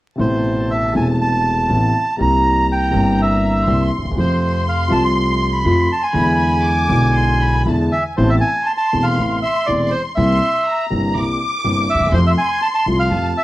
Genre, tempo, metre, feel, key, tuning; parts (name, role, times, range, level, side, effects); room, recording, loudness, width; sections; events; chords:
tango; 121 BPM; 4/4; rubato; A4 = 440 Hz
bandoneon; melody; 0.2-13.4 s; C5 to C6; -18 LUFS; right 1 dB
warm studio violin section; second line; 0.2-13.4 s; G#5 to D6; -24 LUFS; left 1 dB
warm concert grand piano; accompaniment; 0.2-13.3 s; E1 to F4; -19 LUFS; left 1 dB
upright bass; bass; 0.2-13.3 s; E1 to F2; -20 LUFS; equal
moderate studio reverb, RT60 0.6 s; worn, warbling old tape, cassette tape, vinyl crackle, warbly pitch drift; -14 LUFS; side -16 dB against mid
0.2-8.2 A section; 8.2-13.4 B section
0.2 Amadd9; 2.2 C7; 4.2 F; 6.1 E7; 8.2 Amadd9; 10.2 C7; 12.1 F